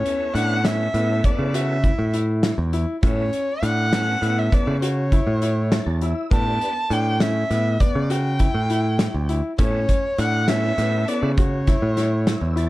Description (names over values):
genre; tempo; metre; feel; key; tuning
progressive instrumental, band music in an uneven meter; 201 BPM (eighths); 11/8; straight; A mixolydian; A4 = 439 Hz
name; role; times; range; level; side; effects
dark violin; melody; 0.0-12.5 s; C#5 to A5; -25 LUFS; equal; plate reverb
tonewheel organ; accompaniment; 0.0-12.7 s; B3 to A5; -32 LUFS; right 1 dB; chorus vibrato, fast rotary speaker, plate reverb
clear baby grand piano; arpeggios; 0.0-12.7 s; B3 to F#4; -29 LUFS; left 4 dB; plate reverb, tape echo
loose indie drum kit; drums; 0.1-12.7 s; hi-hat, kick drum, snare drum; -22 LUFS; equal; none
modern bright picked electric bass; bass; 0.3-12.7 s; D2 to C#3; -22 LUFS; equal; none
room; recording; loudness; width
light reverb; dark, warm production; -18 LUFS; side -17 dB against mid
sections
0.0-12.7 A section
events
tonewheel organ fill 5.4-6.3, 12.0-12.7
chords
0.0 Aadd9; 6.3 G/A; 9.6 Aadd9